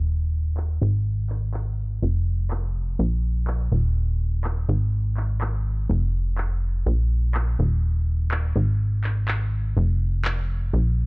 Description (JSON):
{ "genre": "piano house", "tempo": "124 BPM", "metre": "4/4", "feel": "straight", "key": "unclear", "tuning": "A4 = 441 Hz", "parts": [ { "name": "plucky analog bass", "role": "bass", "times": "0.0-11.1 s", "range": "Eb1 to Bb1", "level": "-21 LUFS", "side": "equal", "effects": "none" }, { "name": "electronic handclaps", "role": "drums", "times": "0.6-10.4 s", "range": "none", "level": "-32 LUFS", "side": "equal", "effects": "none" } ], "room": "little or no reverb", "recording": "dry, gritty hardware recording, low-pass filter", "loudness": "-21 LUFS", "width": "side -32 dB against mid", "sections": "0.0-11.1 A section", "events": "filter sweep 0.0-11.1", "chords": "none", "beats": "| 0.09 0.57 1.06 1.54 | 2.02 2.51 2.99 3.48 | 3.96 4.45 4.93 5.41 | 5.90 6.38 6.86 7.35 | 7.83 8.31 8.80 9.28 | 9.77 10.25 10.73" }